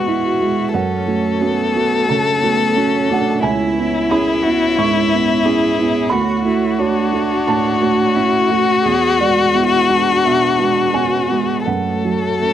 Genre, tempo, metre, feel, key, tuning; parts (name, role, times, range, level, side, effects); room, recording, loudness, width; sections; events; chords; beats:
neoclassical piano and strings; 88 BPM; 4/4; rubato; F# minor; A4 = 441 Hz
rich violin; melody; 0.0-12.5 s; E4 to A4; -17 LUFS; left 5 dB
rich cello; second line; 0.0-12.5 s; A3 to G#4; -23 LUFS; right 3 dB
felt-muted upright piano; accompaniment; 0.0-12.5 s; C#2 to C#6; -18 LUFS; right 6 dB
sweeping resonant pad; sustained chords; 0.0-12.5 s; G#3 to C#5; -26 LUFS; left 2 dB; chorus
little or no reverb; dry, close 1970s-style studio recording; -14 LUFS; side -10 dB against mid
0.0-12.5 A section
0.0 Eadd9; 0.7 F#m; 3.4 C#m7; 6.1 Dmaj7; 8.9 Eadd9; 11.7 F#m
0.06 | 0.74 1.42 2.09 2.75 | 3.43 4.10 4.77 5.45 | 6.12 6.79 7.47 8.16 | 8.86 9.55 10.25 10.95 | 11.67 12.41